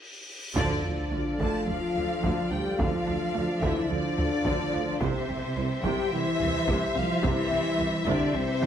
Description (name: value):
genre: cinematic, hybrid orchestral and electronic film score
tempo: 108 BPM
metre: 4/4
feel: straight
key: D minor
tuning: A4 = 440 Hz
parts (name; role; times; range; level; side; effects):
- cymbal swell and sub drop; sound effects; 0.0-2.8 s; none; -36 LUFS; equal; none
- rich symphonic violin section; melody; 0.6-8.7 s; D5 to E5; -37 LUFS; left 3 dB; none
- warm studio violin section; second line; 0.6-8.7 s; C5 to A5; -33 LUFS; left 4 dB; none
- dark symphonic viola section; accompaniment; 0.6-8.7 s; C3 to C5; -36 LUFS; right 1 dB; none
- dark French horn section; sustained chords; 0.6-8.7 s; C4 to A4; -31 LUFS; left 4 dB; none
- dark analog pad; sustained chords; 0.6-8.7 s; F3 to F5; -38 LUFS; equal; chorus, phaser
- mellow trombone section; sustained chords; 0.6-8.7 s; F3 to F4; -37 LUFS; right 4 dB; none
- mallet-like synth pluck; arpeggios; 0.6-8.7 s; C3 to D4; -40 LUFS; right 3 dB; none
- mellow tuba; bass; 0.6-8.7 s; C2 to D2; -37 LUFS; right 4 dB; none
- rich symphonic double bass section; bass; 0.6-8.7 s; C2 to D2; -36 LUFS; right 3 dB; none
- warm symphonic cello section; bass; 0.6-8.7 s; C3 to A3; -33 LUFS; right 3 dB; none
- taiko ensemble; drums; 0.6-8.7 s; none; -33 LUFS; equal; none
room: moderate recital hall reverb, RT60 1.5 s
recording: close, detailed microphones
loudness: -25 LUFS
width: side -9 dB against mid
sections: 0.6-8.7 A section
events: break 0.0-0.6; drum fill 0.0-0.6; cymbal swell 0.0-0.6; band accent 0.6-1.1; impact 0.6-2.8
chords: 0.0 N.C.; 0.6 Dm; 5.0 C